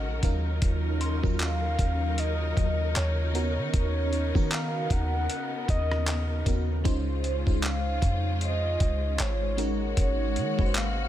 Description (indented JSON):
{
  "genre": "contemporary R&B",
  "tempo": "77 BPM",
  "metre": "4/4",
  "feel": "swing 58% on 16ths",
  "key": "Db major",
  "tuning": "A4 = 440 Hz",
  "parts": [
    { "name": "mellow horn-like synth lead", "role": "melody", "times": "0.0-11.1 s", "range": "Db5 to Gb5", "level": "-33 LUFS", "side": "equal", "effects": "chorus, ping-pong delay" },
    { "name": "FM electric piano with soft pad layer", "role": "accompaniment", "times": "0.0-11.1 s", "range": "Gb3 to C5", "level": "-33 LUFS", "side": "equal", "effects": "chorus, phaser" },
    { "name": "warm symphonic string section", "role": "sustained chords", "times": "0.0-11.1 s", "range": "Db3 to Bb4", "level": "-36 LUFS", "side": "left 1 dB", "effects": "none" },
    { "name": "clean 808-style bass", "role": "bass", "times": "0.0-11.1 s", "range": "Ab1 to Eb3", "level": "-28 LUFS", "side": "equal", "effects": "none" },
    { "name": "dusty soul sampler-style drum kit", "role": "drums", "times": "0.2-11.0 s", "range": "handclaps, hi-hat, kick drum, rim click", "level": "-27 LUFS", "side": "equal", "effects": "none" },
    { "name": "soft synth bell", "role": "texture", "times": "1.0-6.3 s", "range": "Bb5 to C6", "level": "-45 LUFS", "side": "equal", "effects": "chorus, ping-pong delay" }
  ],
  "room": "digital ambience",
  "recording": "none",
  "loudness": "-24 LUFS",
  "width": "side -12 dB against mid",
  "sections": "0.0-11.1 A section",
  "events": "none",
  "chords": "0.2 Ebm7; 3.3 Cbmaj9/Eb; 6.9 Dbmaj7; 9.6 Ab9sus4"
}